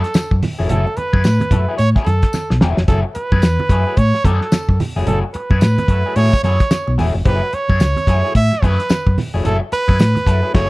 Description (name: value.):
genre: funk.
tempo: 110 BPM.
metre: 4/4.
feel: swing 60% on 16ths.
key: F# minor.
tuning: A4 = 440 Hz.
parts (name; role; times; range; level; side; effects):
clear trumpet; melody; 0.0-10.7 s; A4 to E5; -20 LUFS; right 2 dB; none.
electric guitar at the edge of break-up; accompaniment; 0.0-10.7 s; F#3 to A4; -25 LUFS; left 4 dB; wah.
cloth-damped thuddy drum kit; drums; 0.0-10.7 s; crash cymbal, hi-hat, kick drum, snare drum; -16 LUFS; equal; none.
congas; percussion; 0.1-10.3 s; none; -25 LUFS; right 3 dB; none.
tambourine; percussion; 0.1-10.1 s; none; -34 LUFS; left 4 dB; none.
hollow-body short-scale fingered electric bass; bass; 0.3-10.7 s; E1 to A2; -16 LUFS; equal; none.
room: studio ambience.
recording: dry, close 1970s-style studio recording.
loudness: -13 LUFS.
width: side -21 dB against mid.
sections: 0.0-10.7 A section.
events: drum fill 2.3-2.9.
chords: 0.0 F#m9.